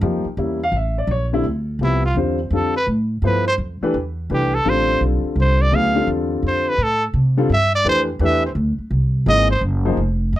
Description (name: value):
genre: modal jazz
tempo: 169 BPM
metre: 3/4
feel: swing 66% on 8ths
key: D dorian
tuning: A4 = 441 Hz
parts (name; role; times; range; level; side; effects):
- warm concert grand piano; accompaniment; 0.0-10.0 s; C3 to F5; -21 LUFS; left 2 dB; none
- upright bass; bass; 0.0-10.4 s; F1 to C3; -20 LUFS; equal; none
- brilliant trumpet; melody; 1.8-10.4 s; E4 to F5; -19 LUFS; right 1 dB; none
room: light reverb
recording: close, detailed microphones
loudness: -16 LUFS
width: side -14 dB against mid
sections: 0.0-1.4 A section; 1.4-10.0 A section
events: trumpet solo 1.4-10.4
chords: 0.4 A7b9; 1.4 Dm9; 8.9 C7alt